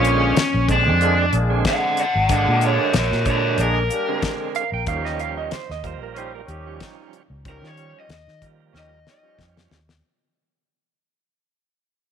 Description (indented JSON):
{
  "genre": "straight-eighth soul blues",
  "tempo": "93 BPM",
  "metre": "4/4",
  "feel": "swing 55% on 16ths",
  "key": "unclear",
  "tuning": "A4 = 439 Hz",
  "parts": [
    { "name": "raw garage guitar", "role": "melody", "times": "0.0-9.4 s", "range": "Db4 to Gb5", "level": "-21 LUFS", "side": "left 1 dB", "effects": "overdrive" },
    { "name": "bright tonewheel organ", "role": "accompaniment", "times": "0.0-9.8 s", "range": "D3 to C5", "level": "-28 LUFS", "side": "right 12 dB", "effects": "slow rotary speaker, overdrive" },
    { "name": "mellow horn section", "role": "sustained chords", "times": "0.0-9.6 s", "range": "G3 to Ab4", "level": "-29 LUFS", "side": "left 2 dB", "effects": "none" },
    { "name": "vintage muted fingered electric bass", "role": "bass", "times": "0.0-10.0 s", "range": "Ab1 to Eb3", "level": "-23 LUFS", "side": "equal", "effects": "none" },
    { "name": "damped 70s drum kit", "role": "drums", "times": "0.0-10.0 s", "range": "hi-hat, kick drum, snare drum", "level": "-24 LUFS", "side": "left 3 dB", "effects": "none" },
    { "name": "clean lap steel guitar", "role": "second line", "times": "4.6-7.1 s", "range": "Eb4 to G5", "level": "-29 LUFS", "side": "right 11 dB", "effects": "none" }
  ],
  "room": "light reverb",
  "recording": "1960s-style stereo",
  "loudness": "-17 LUFS",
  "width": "side -8 dB against mid",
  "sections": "0.0-10.0 A section",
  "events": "fade-out 0.0-10.0; drum fill 8.7-10.0",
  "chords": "0.0 Bb7; 4.9 Eb7",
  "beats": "0.36 1.01 1.65 | 2.29 2.94 3.58 4.23 | 4.87 5.52 6.16 6.81 | 7.45 8.10 8.74 9.39"
}